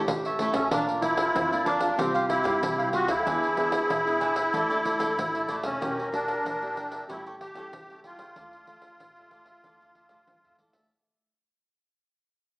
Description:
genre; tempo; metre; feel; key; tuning
samba and choro; 94 BPM; 4/4; straight; D harmonic minor; A4 = 437 Hz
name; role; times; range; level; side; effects
mellow hollow silver concert flute; second line; 0.0-8.4 s; F4 to Bb4; -33 LUFS; equal; none
nylon-string guitar; accompaniment; 0.0-10.9 s; F2 to G#4; -37 LUFS; equal; none
upright bass; bass; 0.0-10.9 s; E1 to G2; -43 LUFS; equal; none
pandeiro; percussion; 0.1-10.9 s; none; -33 LUFS; equal; none
cavaquinho; accompaniment; 0.3-10.9 s; D4 to G5; -30 LUFS; right 1 dB; none
musette accordion; melody; 0.4-10.6 s; A3 to G4; -27 LUFS; equal; none
room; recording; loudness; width
wet large studio reverb, RT60 1.2 s; band playing live in one room, small speaker sound; -24 LUFS; side -26 dB against mid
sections
0.0-10.9 A section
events
fade-out 0.0-10.9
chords
0.0 A; 0.7 Bb; 2.0 Csus4; 3.3 E7; 4.5 Asus4; 5.8 Edim; 7.1 A7; 8.4 Dmadd9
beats
0.08 | 0.72 1.35 1.99 2.63 | 3.27 3.90 4.54 5.18 | 5.81 6.45 7.09 7.73 | 8.36 9.00 9.64 10.28

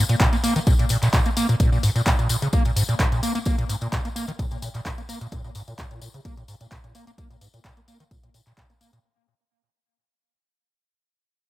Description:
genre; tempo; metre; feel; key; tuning
acid house; 129 BPM; 4/4; straight; Bb minor; A4 = 440 Hz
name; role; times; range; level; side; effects
overdriven acid bass; riff; 0.0-9.0 s; Ab2 to Bb3; -23 LUFS; equal; wide subtle chorus, cassette tape, sidechain pumping, ping-pong delay
punchy analog drum machine; drums; 0.1-9.0 s; handclaps, hi-hat; -28 LUFS; equal; none
tambourine; percussion; 0.1-9.0 s; none; -32 LUFS; left 4 dB; none
electronic kick drum; drums; 0.2-8.7 s; none; -23 LUFS; equal; none
room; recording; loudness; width
digital ambience; none; -20 LUFS; side -16 dB against mid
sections
0.0-9.0 A section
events
fade-out 0.0-9.0; filter sweep on acid bass 0.0-9.0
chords
none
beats
0.20 0.67 1.13 | 1.60 2.06 2.53 3.00 | 3.46 3.92 4.39 4.86 | 5.32 5.79 6.25 6.72 | 7.18 7.65 8.11 8.58

